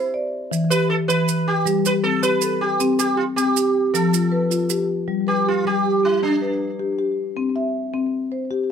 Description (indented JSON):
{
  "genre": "southern african traditional, mbira-style interlocking cycle",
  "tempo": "105 BPM (dotted quarters)",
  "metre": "12/8",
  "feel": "straight",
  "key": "G mixolydian",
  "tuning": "A4 = 440 Hz",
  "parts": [
    { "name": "sitar", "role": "melody", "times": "0.0-7.0 s", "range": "D4 to B4", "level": "-22 LUFS", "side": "right 4 dB", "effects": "none" },
    { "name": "marimba with soft mallets", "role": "arpeggios", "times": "0.0-8.7 s", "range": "E3 to E5", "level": "-21 LUFS", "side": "left 4 dB", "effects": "slapback echo" },
    { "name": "maracas", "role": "percussion", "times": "0.5-4.9 s", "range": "none", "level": "-27 LUFS", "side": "right 12 dB", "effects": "none" }
  ],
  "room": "moderate studio reverb, RT60 0.6 s",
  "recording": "none",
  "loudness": "-18 LUFS",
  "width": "side -7 dB against mid",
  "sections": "0.0-5.1 A section; 5.1-8.7 B section",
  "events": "none",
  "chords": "0.0 N.C.; 0.5 Em; 1.7 G; 2.8 C5; 3.9 F; 5.1 G; 7.4 C"
}